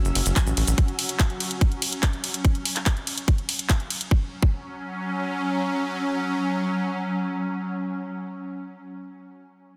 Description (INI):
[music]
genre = psychedelic trance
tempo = 144 BPM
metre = 4/4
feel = straight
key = unclear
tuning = A4 = 441 Hz
[part]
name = evolving wavetable pad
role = sustained chords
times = 0.0-8.2 s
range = F#3 to C#4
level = -31 LUFS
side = equal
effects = ensemble chorus, built-in reverb, sidechain pumping
[part]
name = tight sequencer bass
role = bass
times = 0.0-0.7 s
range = F#1 to A1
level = -25 LUFS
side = equal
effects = none
[part]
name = granular cloud pad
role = texture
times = 0.0-0.8 s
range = C#4 to E6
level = -38 LUFS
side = equal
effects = built-in reverb, sidechain pumping
[part]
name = garage drum kit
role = drums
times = 0.1-4.1 s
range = handclaps, hi-hat, ride cymbal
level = -30 LUFS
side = equal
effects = studio reverb
[part]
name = cabasa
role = percussion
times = 0.1-0.8 s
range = none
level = -33 LUFS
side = equal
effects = none
[part]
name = electronic kick drum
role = drums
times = 0.4-4.5 s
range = none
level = -22 LUFS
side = equal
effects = studio reverb
[sound]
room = light reverb, digital ambience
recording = dense, heavily limited modern master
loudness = -25 LUFS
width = mono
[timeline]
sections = 0.0-4.1 A section; 4.1-7.4 B section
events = drop 0.0-4.1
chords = 0.0 F#5